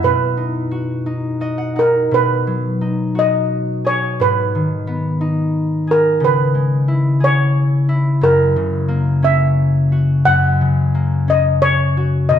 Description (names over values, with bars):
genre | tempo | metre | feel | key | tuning
children's music | 59 BPM (dotted quarters) | 6/8 | rubato | B major | A4 = 440 Hz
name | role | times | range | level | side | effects
steel pan | melody | 0.0-12.4 s | A#4 to F#5 | -16 LUFS | right 1 dB | none
concert harp | accompaniment | 0.0-12.4 s | F#2 to F#5 | -16 LUFS | left 2 dB | none
room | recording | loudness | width
wet recital hall reverb, RT60 1.5 s | dark, warm production | -14 LUFS | side -9 dB against mid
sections
0.0-2.1 A section; 2.1-12.4 B section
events
harp fill 1.1-2.1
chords
0.0 B; 2.1 B6; 4.2 G#m; 6.2 C#m; 8.2 F#